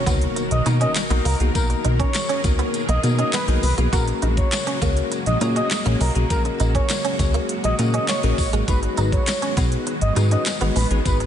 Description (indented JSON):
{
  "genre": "dance-pop",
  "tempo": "101 BPM",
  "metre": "4/4",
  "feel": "straight",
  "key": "B major",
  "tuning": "A4 = 440 Hz",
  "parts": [
    { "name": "expressive synth lead", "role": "melody", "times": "0.0-11.2 s", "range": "A#4 to D#5", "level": "-26 LUFS", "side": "equal", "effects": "chorus, sidechain pumping, analog delay" },
    { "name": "string machine, cellos", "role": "sustained chords", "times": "0.0-11.3 s", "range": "B2 to A#4", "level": "-28 LUFS", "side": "equal", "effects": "ensemble chorus, sidechain pumping" },
    { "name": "direct-recorded clean electric guitar", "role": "riff", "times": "0.0-11.2 s", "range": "G#3 to F#4", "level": "-30 LUFS", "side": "right 7 dB", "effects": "ensemble chorus" },
    { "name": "impact", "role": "sound effects", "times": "0.0-1.6 s", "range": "none", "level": "-35 LUFS", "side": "right 2 dB", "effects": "none" },
    { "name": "bell-like tine electric piano", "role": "accompaniment", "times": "0.1-11.3 s", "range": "A#3 to C#5", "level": "-28 LUFS", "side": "left 6 dB", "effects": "wide subtle chorus, sidechain pumping" },
    { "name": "plucky analog bass", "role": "bass", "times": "0.1-11.3 s", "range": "G#1 to B2", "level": "-20 LUFS", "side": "equal", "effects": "sidechain pumping" },
    { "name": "pop drum kit", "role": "drums", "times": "0.1-11.3 s", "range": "handclaps, hi-hat, kick drum, snare drum", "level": "-24 LUFS", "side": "equal", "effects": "none" },
    { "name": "tambourine", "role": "percussion", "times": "0.1-11.2 s", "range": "none", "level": "-35 LUFS", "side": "left 6 dB", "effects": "none" }
  ],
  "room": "moderate lush hall reverb, RT60 2.8 s",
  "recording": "dreamy mix soaked in reverb, nothing above 10.6 kHz",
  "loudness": "-18 LUFS",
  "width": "side -9 dB against mid",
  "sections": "0.0-11.3 A section",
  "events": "impact 0.0-1.6",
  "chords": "0.0 Bmaj7; 3.9 F#add9/A#; 8.7 G#m7"
}